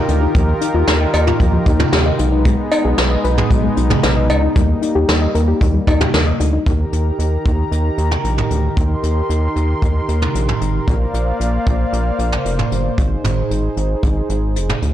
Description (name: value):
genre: synth-pop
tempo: 114 BPM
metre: 4/4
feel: straight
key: Eb major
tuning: A4 = 440 Hz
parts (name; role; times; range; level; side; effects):
- warm analog pad; sustained chords; 0.0-14.9 s; Eb3 to C6; -22 LUFS; equal; chorus
- soft round pluck; arpeggios; 0.0-6.6 s; F3 to Eb5; -21 LUFS; left 5 dB; chorus, slapback echo
- rubbery square bass; bass; 0.1-14.9 s; F1 to Eb2; -17 LUFS; equal; tube saturation
- jazz brush drum kit; drums; 0.1-14.9 s; cowbell, hi-hat, kick drum, snare drum, toms; -18 LUFS; right 1 dB; soft clipping on snare
room: light reverb, studio reverb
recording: blown-out, overdriven recording, overdrive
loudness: -14 LUFS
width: side -12 dB against mid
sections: 0.0-6.7 A section; 6.7-14.9 B section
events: none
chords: 0.0 Ebadd9; 2.2 B6; 4.6 Eb; 10.9 Bbadd9; 13.0 Ab